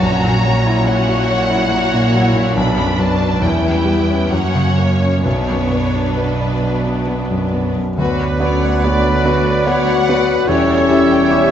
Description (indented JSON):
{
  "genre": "classical, romantic movement for piano and orchestra",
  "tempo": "63-74 BPM",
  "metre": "3/4",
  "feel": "rubato",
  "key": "B minor",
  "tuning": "A4 = 441 Hz",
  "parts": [
    { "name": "clear grand piano", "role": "melody", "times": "0.0-11.5 s", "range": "A#1 to C#5", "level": "-17 LUFS", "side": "left 1 dB", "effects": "none" },
    { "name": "rich symphonic violin section", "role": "melody", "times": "0.0-11.5 s", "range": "B4 to B5", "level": "-24 LUFS", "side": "left 2 dB", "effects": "none" },
    { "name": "clear symphonic violin section", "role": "second line", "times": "0.0-11.5 s", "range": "C#4 to G5", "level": "-23 LUFS", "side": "left 2 dB", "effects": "none" },
    { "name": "rich symphonic viola section", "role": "accompaniment", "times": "0.0-11.5 s", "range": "F#3 to C#5", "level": "-24 LUFS", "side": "right 2 dB", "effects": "none" },
    { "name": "rich symphonic cello section", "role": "bass", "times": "0.0-11.5 s", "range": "D2 to B2", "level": "-22 LUFS", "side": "right 4 dB", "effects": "none" },
    { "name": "clear oboe", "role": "second line", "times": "8.0-11.5 s", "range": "B4 to C#5", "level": "-22 LUFS", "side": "right 1 dB", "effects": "none" },
    { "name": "mellow large flute ensemble", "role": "second line", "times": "8.0-11.5 s", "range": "B4 to F#5", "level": "-26 LUFS", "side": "right 1 dB", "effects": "none" },
    { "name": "dark bassoon", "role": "accompaniment", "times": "8.0-11.5 s", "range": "F#3 to G3", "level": "-23 LUFS", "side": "right 2 dB", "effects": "none" },
    { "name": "clear trombone section", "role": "sustained chords", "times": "8.0-11.5 s", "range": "F#3 to C#4", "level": "-27 LUFS", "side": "right 4 dB", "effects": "none" },
    { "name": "mellow French horn section", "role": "sustained chords", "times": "8.0-11.5 s", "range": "B3 to F#4", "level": "-18 LUFS", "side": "left 5 dB", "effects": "none" },
    { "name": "mellow trumpet", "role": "stabs", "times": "8.0-11.5 s", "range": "D5 to E5", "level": "-24 LUFS", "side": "right 3 dB", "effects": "none" },
    { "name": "rich symphonic double bass section", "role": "bass", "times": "8.0-11.5 s", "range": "E1 to D2", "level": "-23 LUFS", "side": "right 5 dB", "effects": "none" }
  ],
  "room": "wet scoring stage reverb, RT60 1.8 s",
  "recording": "nothing above 7.7 kHz",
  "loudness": "-13 LUFS",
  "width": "side -9 dB against mid",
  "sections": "0.0-8.0 A section; 8.0-11.5 B section",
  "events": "none",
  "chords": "0.0 F#7/A#; 2.6 Bm; 3.4 C#dim/E; 4.3 F#; 5.2 Bm; 8.0 Bm/D; 10.5 C#dim/E"
}